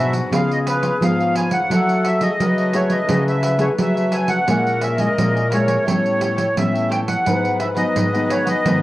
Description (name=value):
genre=samba and choro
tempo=86 BPM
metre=4/4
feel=straight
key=unclear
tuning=A4 = 441 Hz
part: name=accordion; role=melody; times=0.0-8.8 s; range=B4 to G#5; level=-21 LUFS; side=equal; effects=light tremolo tuning, cassette tape
part: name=breathy hollow jazz flute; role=second line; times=0.0-8.8 s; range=F#4 to C#5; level=-26 LUFS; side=left 3 dB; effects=none
part: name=cavaquinho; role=accompaniment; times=0.0-8.8 s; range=D4 to G#5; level=-30 LUFS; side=right 2 dB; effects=none
part: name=nylon-string guitar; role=accompaniment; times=0.0-8.8 s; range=G#2 to G#4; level=-24 LUFS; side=left 2 dB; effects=none
part: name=nylon-string guitar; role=bass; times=0.0-8.8 s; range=G#2 to F#3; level=-22 LUFS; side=equal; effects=none
part: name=pandeiro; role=percussion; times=0.1-8.8 s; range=none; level=-24 LUFS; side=right 4 dB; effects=none
room=light reverb, small room ambience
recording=home recording on cassette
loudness=-16 LUFS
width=side -16 dB against mid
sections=0.0-8.8 A section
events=none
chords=0.3 C#7; 1.7 F#m9; 4.5 A#m7b5; 5.9 A9; 7.3 G#m7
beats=0.32 1.02 | 1.71 2.40 3.10 3.79 | 4.49 5.18 5.87 6.57 | 7.26 7.96 8.65